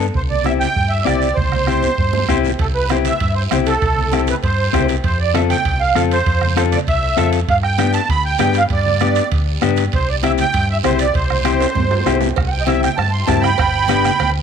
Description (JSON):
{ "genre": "latin, cumbia", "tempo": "196 BPM", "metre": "4/4", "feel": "straight", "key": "C major", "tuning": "A4 = 440 Hz", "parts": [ { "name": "mellow electric guitar", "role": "accompaniment", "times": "0.0-14.1 s", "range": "B3 to A4", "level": "-20 LUFS", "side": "left 13 dB", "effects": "none" }, { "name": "fingered electric bass", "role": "bass", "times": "0.0-14.4 s", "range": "G1 to G2", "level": "-20 LUFS", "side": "equal", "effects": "none" }, { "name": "bombo", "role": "percussion", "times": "0.1-14.4 s", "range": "none", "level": "-22 LUFS", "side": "right 3 dB", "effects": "none" }, { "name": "congas", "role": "percussion", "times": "0.1-14.3 s", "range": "none", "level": "-27 LUFS", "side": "right 11 dB", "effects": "none" }, { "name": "guiro", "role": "percussion", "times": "0.1-14.4 s", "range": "none", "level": "-31 LUFS", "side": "right 15 dB", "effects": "none" }, { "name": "musette accordion", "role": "melody", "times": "0.2-14.3 s", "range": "A4 to C6", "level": "-19 LUFS", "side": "right 4 dB", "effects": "none" }, { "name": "timbales and cowbell", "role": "percussion", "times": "2.6-14.4 s", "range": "none", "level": "-29 LUFS", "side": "right 15 dB", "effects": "none" } ], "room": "light reverb, small room ambience", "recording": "1960s-style stereo with parts hard left and right", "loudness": "-14 LUFS", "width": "side -7 dB against mid", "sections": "0.0-2.6 A section; 2.6-12.4 A section; 12.4-14.4 B section", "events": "drum fill 1.4-2.6, 11.6-12.4; accordion solo 12.4-14.4", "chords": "0.1 C; 5.0 F; 7.5 G; 9.9 C; 13.6 G", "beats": "| 0.15 0.45 0.76 1.07 | 1.37 1.68 1.98 2.29 | 2.59 2.90 3.21 3.51 | 3.82 4.12 4.43 4.73 | 5.04 5.34 5.65 5.95 | 6.26 6.57 6.87 7.18 | 7.48 7.79 8.09 8.40 | 8.70 9.01 9.31 9.62 | 9.92 10.23 10.54 10.84 | 11.14 11.45 11.76 12.06 | 12.37 12.67 12.98 13.28 | 13.59 13.89 14.20" }